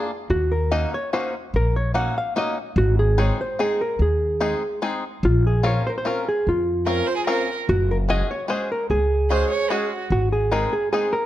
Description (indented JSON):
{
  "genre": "musette waltz",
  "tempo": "147 BPM",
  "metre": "3/4",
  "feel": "straight",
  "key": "unclear",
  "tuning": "A4 = 440 Hz",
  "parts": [
    { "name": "hollow-body jazz guitar", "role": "melody", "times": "0.0-11.3 s", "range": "F4 to Gb5", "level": "-23 LUFS", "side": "right 1 dB", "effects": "none" },
    { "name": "bluegrass banjo", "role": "accompaniment", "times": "0.0-11.1 s", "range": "Ab3 to Bb4", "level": "-27 LUFS", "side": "left 3 dB", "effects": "none" },
    { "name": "upright bass", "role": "bass", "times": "0.3-10.6 s", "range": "Gb1 to F2", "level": "-21 LUFS", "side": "equal", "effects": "none" },
    { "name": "rich violin", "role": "second line", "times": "6.9-10.0 s", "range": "Gb4 to Db5", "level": "-26 LUFS", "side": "right 4 dB", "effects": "none" }
  ],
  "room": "light reverb",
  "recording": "dark, warm production",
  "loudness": "-19 LUFS",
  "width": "side -13 dB against mid",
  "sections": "0.0-11.3 A section",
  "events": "none",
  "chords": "0.3 Ebm7; 2.8 Ab; 5.2 Bbmadd9; 7.7 Gbsus2; 10.1 Ab",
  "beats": "| 0.30 0.71 1.13 | 1.54 1.95 2.36 | 2.77 3.18 3.59 | 4.00 4.40 4.82 | 5.23 5.64 6.05 | 6.46 6.87 7.28 | 7.68 8.08 8.49 | 8.89 9.30 9.70 | 10.11 10.52 10.92"
}